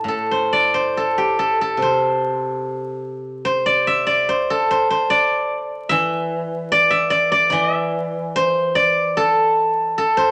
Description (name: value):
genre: chinese traditional, Chinese solo plucked strings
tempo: 73 BPM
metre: 4/4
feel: rubato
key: A yu mode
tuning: A4 = 442 Hz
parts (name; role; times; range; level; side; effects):
- steel-string zither; solo; 0.0-10.3 s; A2 to E5; -19 LUFS; equal; none
room: light reverb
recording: vinyl crackle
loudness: -19 LUFS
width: mono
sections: 0.1-10.3 A section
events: none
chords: none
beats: | 0.06 0.94 1.79 2.63 | 3.45 4.29 5.11 5.92 | 6.73 7.54 8.36 9.19 | 10.01